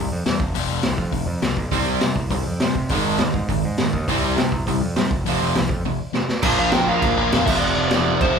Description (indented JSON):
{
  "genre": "punk rock",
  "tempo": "204 BPM",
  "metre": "4/4",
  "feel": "straight",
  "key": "unclear",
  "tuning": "A4 = 439 Hz",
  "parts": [
    { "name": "sludgy distorted guitar", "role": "riff", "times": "0.0-8.4 s", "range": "F2 to C4", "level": "-25 LUFS", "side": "left 7 dB", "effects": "overdrive" },
    { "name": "overdriven picked electric bass", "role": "bass", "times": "0.0-8.3 s", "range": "E1 to C3", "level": "-26 LUFS", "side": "right 1 dB", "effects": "none" },
    { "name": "raw garage drum kit", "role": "drums", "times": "0.3-8.3 s", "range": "crash cymbal, hi-hat, kick drum, snare drum", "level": "-22 LUFS", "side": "equal", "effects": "none" },
    { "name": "overdriven semi-hollow guitar", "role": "riff", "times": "1.7-8.4 s", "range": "F2 to C4", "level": "-24 LUFS", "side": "right 7 dB", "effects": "none" },
    { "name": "biting lead guitar", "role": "melody", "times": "6.6-8.4 s", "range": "C5 to G5", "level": "-23 LUFS", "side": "equal", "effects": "overdrive" }
  ],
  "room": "light reverb",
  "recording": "band playing live in one room",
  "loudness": "-18 LUFS",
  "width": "side -6 dB against mid",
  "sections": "0.0-6.4 A section; 6.4-8.4 B section",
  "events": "break 5.9-6.4; drum fill 6.2",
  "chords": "0.4 F5; 1.7 C5; 2.9 Ab5; 4.1 C5; 5.1 F5; 6.4 Bb5; 7.5 F5"
}